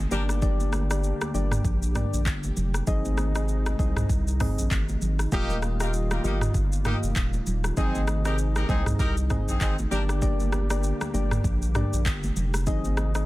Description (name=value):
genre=afrobeats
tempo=98 BPM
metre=4/4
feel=swing 58% on 16ths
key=unclear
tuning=A4 = 440 Hz
part: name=lush unison pad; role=sustained chords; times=0.0-13.3 s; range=C3 to G4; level=-37 LUFS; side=equal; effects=chorus
part: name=saturated sub bass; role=bass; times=0.0-13.3 s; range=Eb1 to C2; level=-26 LUFS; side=equal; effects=none
part: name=warm horn section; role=second line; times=0.1-0.2, 5.3-10.0 s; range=Bb3 to Bb4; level=-33 LUFS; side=equal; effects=none
part: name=soft electric-piano-like synth keys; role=accompaniment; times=0.1-13.3 s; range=Bb3 to Eb5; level=-32 LUFS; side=left 2 dB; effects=chorus
part: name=afro-pop drum kit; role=drums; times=0.1-13.3 s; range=handclaps, hi-hat, kick drum, rim click, shaker, toms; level=-28 LUFS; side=equal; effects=none
part: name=congas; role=percussion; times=0.1-13.1 s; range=none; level=-37 LUFS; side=right 1 dB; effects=none
room=little or no reverb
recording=dense, heavily limited modern master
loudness=-23 LUFS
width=side -18 dB against mid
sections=0.0-13.3 A section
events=none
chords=0.1 Gm; 2.9 Ab; 5.3 Ebadd9; 7.8 Ab; 9.9 Gm; 12.7 Ab